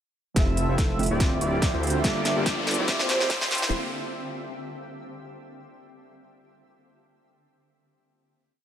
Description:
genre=future bass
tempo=143 BPM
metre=4/4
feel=swing 55% on 16ths, half-time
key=D minor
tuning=A4 = 440 Hz
part: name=soft round pluck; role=accompaniment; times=0.3-3.7 s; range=D3 to E5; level=-34 LUFS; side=right 3 dB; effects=chorus, sidechain pumping, digital delay
part: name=warm velvety synth lead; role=melody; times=0.4-3.6 s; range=C5 to E5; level=-33 LUFS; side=right 1 dB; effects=chorus, sidechain pumping, digital delay
part: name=shimmering ambient pad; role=sustained chords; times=1.4-3.7 s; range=D3 to A5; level=-38 LUFS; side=equal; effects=chorus, built-in reverb, sidechain pumping
part: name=airy dreamy lead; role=arpeggios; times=0.4-3.7 s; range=C6 to E6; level=-37 LUFS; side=left 1 dB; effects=chorus, sidechain pumping
part: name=thumb-piano-like synth pluck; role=arpeggios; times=0.4-3.7 s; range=C4 to A4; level=-38 LUFS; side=right 2 dB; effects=none
part: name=soft supersaw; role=riff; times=0.4-3.7 s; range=Bb3 to E5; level=-31 LUFS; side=equal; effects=sidechain pumping, low-pass filter
part: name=wide detuned saw bass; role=bass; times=0.4-3.7 s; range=D1 to D2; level=-28 LUFS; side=equal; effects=chorus, sidechain pumping
part: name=big-room dance drum kit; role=drums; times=0.4-3.7 s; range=hi-hat, snare drum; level=-28 LUFS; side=equal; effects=high-pass filter on snare, studio reverb, high-pass filter on hats
part: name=electronic kick drum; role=drums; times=0.4-3.4 s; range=none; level=-24 LUFS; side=equal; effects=studio reverb
part: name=riser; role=sound effects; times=1.3-3.7 s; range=none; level=-34 LUFS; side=left 2 dB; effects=none
room=light reverb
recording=high-pass filter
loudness=-22 LUFS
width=side -10 dB against mid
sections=0.4-3.7 build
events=build-up 0.4-3.7; drum fill 0.4-3.7; filter sweep on supersaw synth 0.4-3.7; filter sweep on soft synth lead 0.4-3.7; filter sweep 0.4-3.7; riser 1.3-3.7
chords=0.4 Fmaj7; 1.0 Dm11; 2.0 Gm9; 2.9 Dm11

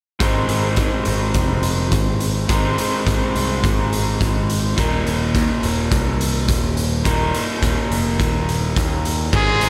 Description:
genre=indie rock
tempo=105 BPM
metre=4/4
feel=straight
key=unclear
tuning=A4 = 440 Hz
part: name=raw garage guitar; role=riff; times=0.2-9.7 s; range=Eb2 to Eb4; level=-24 LUFS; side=equal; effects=overdrive, spring reverb
part: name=modern bright picked electric bass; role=bass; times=0.2-9.7 s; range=Eb1 to Ab2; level=-24 LUFS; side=equal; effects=none
part: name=raw garage drum kit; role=drums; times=0.2-9.7 s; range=crash cymbal, hi-hat, kick drum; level=-23 LUFS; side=equal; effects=none
part: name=brilliant trumpet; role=melody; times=9.4-9.7 s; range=Ab4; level=-20 LUFS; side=equal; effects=none
room=little or no reverb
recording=none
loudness=-19 LUFS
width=mono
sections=0.2-9.3 A section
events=none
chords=0.2 Ab; 4.8 Eb5

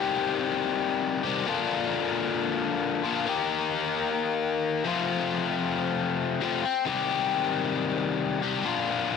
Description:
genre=rock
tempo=134 BPM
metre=4/4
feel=straight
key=C dorian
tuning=A4 = 440 Hz
part: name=biting overdriven guitar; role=solo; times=0.0-9.2 s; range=F2 to G4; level=-25 LUFS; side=left 6 dB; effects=none
room=moderate spring reverb, RT60 1.8 s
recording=none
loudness=-25 LUFS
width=side -5 dB against mid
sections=0.0-9.2 A section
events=none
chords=0.0 Cm; 1.5 Bb; 3.3 Eb; 4.8 F; 6.9 Cm; 8.7 Bb

